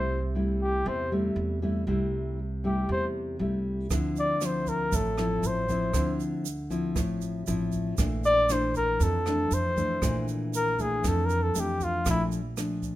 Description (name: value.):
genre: bossa nova.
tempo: 118 BPM.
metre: 4/4.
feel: straight.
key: D minor.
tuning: A4 = 440 Hz.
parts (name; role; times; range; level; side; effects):
breathy flugelhorn; melody; 0.0-12.2 s; E4 to D5; -27 LUFS; left 1 dB; none.
nylon-string guitar; accompaniment; 0.0-13.0 s; F2 to E4; -30 LUFS; left 1 dB; none.
upright bass; bass; 0.0-13.0 s; A1 to F2; -32 LUFS; right 1 dB; none.
jazz brush drum kit; drums; 3.9-12.9 s; hi-hat, kick drum, rim click; -32 LUFS; right 1 dB; none.
tube shaker; percussion; 3.9-13.0 s; none; -40 LUFS; right 12 dB; none.
room: light reverb.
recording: minimal, uncompressed stereo recording.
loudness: -25 LUFS.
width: side -15 dB against mid.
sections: 0.0-13.0 A section.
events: flugelhorn solo 0.0-13.0.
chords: 0.0 Am7/C; 3.9 Dm9; 8.0 Bbmaj9#11; 12.1 Gm9/Bb (rootless).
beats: 0.35 0.86 1.37 | 1.87 2.38 2.89 3.40 | 3.91 4.42 4.93 5.44 | 5.95 6.46 6.97 7.47 | 7.99 8.49 9.01 9.52 | 10.03 10.54 11.04 11.55 | 12.06 12.57.